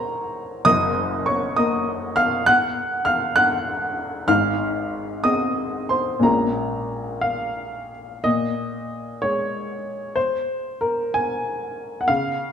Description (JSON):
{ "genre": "neoclassical minimalist piano", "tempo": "58-67 BPM (dotted quarters)", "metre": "6/8", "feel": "rubato", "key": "Bb minor", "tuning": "A4 = 440 Hz", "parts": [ { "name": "warm upright piano", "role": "solo", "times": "0.0-12.5 s", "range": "Gb1 to Gb6", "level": "-20 LUFS", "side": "equal", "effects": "none" } ], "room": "moderate concert hall reverb, RT60 2.0 s", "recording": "recorded in a church or concert hall", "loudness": "-20 LUFS", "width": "side -8 dB against mid", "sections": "0.0-8.2 A section; 8.2-12.5 B section", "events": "none", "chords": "0.0 Db5; 0.7 Gbmaj7; 4.3 Ab; 6.2 Bbm7", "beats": "| 0.66 1.56 | 2.47 3.38 | 4.29 5.24 | 6.22 7.22 | 8.24 9.21 | 10.16 11.15 | 12.09" }